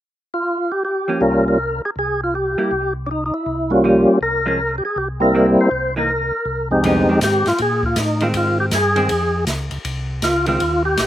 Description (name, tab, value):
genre	soul jazz organ trio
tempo	160 BPM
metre	4/4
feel	swing 64% on 8ths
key	F minor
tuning	A4 = 436 Hz
part	percussive tonewheel organ	melody	0.3-11.1 s	F2 to C5	-16 LUFS	equal	slow rotary speaker, overdrive, chorus vibrato
part	vintage hollow-body jazz guitar	accompaniment	1.1-10.6 s	D3 to E4	-24 LUFS	right 2 dB	slapback echo
part	mellow tonewheel organ	bass	1.2-11.1 s	Bb1 to Bb2	-24 LUFS	equal	slow rotary speaker
part	open jazz drum kit	drums	6.8-11.1 s	hi-hat, kick drum, ride cymbal, snare drum	-25 LUFS	equal	none
room	little or no reverb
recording	recorded outdoors, with no room sound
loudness	-16 LUFS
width	side -12 dB against mid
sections	0.8-6.8 A section; 6.8-11.1 B section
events	none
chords	0.0 N.C.; 0.8 Gm7b5; 1.6 Fmadd11/C; 2.3 C7; 3.1 C7b9; 3.8 Gm7b5; 4.6 C7b13; 5.3 C7; 6.1 Cm7; 6.8 Fm7